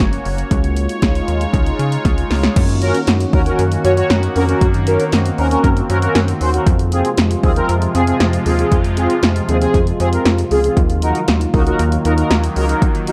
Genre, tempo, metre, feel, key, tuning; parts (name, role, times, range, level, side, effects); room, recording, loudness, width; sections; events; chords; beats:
synth-pop; 117 BPM; 4/4; straight; A4 = 440 Hz
sweeping resonant pad; sustained chords; 0.0-13.1 s; C3 to Db5; -24 LUFS; equal; chorus
rubbery square bass; bass; 0.0-12.7 s; Gb1 to Db3; -20 LUFS; equal
punchy analog drum machine; drums; 0.0-13.1 s; crash cymbal, hi-hat, kick drum, snare drum; -20 LUFS; equal; overdrive
mellow synth brass; accompaniment; 2.8-13.1 s; C4 to Db5; -20 LUFS; equal; chorus, phaser
light reverb, digital ambience; dark, warm production; -16 LUFS; mono
0.0-2.6 A section; 2.6-13.1 B section
drum fill 2.0-2.6
0.0 Gb; 0.5 Dbadd9; 2.6 Gb6; 6.7 Fm; 10.8 Ebmadd9
0.00 | 0.51 1.02 1.54 2.05 | 2.56 3.08 3.59 4.10 | 4.61 5.13 5.64 6.15 | 6.67 7.18 7.69 8.20 | 8.72 9.23 9.74 10.26 | 10.77 11.28 11.79 12.31 | 12.82